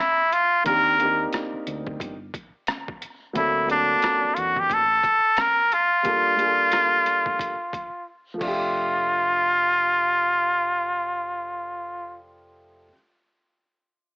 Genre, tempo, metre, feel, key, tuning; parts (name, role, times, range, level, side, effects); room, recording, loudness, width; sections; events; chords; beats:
hip hop, jazz-hop; 89 BPM; 4/4; swing 59% on 16ths; F major; A4 = 440 Hz
trumpet with straight mute; melody; 0.0-12.2 s; D4 to Bb4; -20 LUFS; equal
trip hop sampler-style drum kit; drums; 0.3-8.6 s; crash cymbal, hi-hat, kick drum, rim click; -31 LUFS; equal; overdrive, cassette tape
warm upright piano; accompaniment; 0.6-12.9 s; D3 to E5; -30 LUFS; equal; cassette tape
deep dub fingered electric bass; bass; 0.7-12.9 s; F1 to E2; -40 LUFS; equal
light reverb, small room ambience; home recording on cassette, AM radio sound; -19 LUFS; side -36 dB against mid
0.0-8.7 A section; 8.7-11.4 B section
break 6.0-8.7; drums muted 8.1-8.7
0.0 Fmaj7(no3); 0.7 Cm9; 3.4 D7b13; 6.0 Gm9; 8.4 Fmaj13
| 0.66 1.33 2.00 2.68 | 3.35 4.03 4.70 5.38 | 6.05 6.72 7.40 8.07 | 8.75 9.42 10.09 10.77